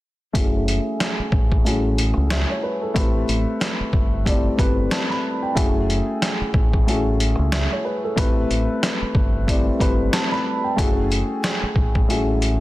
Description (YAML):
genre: hip hop, boom-bap hip-hop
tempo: 92 BPM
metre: 4/4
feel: swing 58% on 16ths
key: F# minor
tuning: A4 = 441 Hz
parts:
  - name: dark upright piano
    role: accompaniment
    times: 0.3-12.6 s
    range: A3 to B5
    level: -22 LUFS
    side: left 1 dB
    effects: cassette tape, low-pass filter
  - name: trip hop sampler-style drum kit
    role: drums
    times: 0.3-12.6 s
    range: hi-hat, kick drum, snare drum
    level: -21 LUFS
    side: equal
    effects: none
  - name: deep dub fingered electric bass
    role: bass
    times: 0.4-12.6 s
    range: F#1 to C#2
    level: -22 LUFS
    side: equal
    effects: none
room: little or no reverb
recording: dense, heavily limited modern master, lossy compression artefacts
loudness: -18 LUFS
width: side -17 dB against mid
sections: 0.3-5.6 A section; 5.6-12.6 B section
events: filter sweep on upright piano 0.3-5.6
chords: 0.3 F#m9; 3.0 Am9; 5.6 F#m9; 8.2 Am9; 10.8 F#m9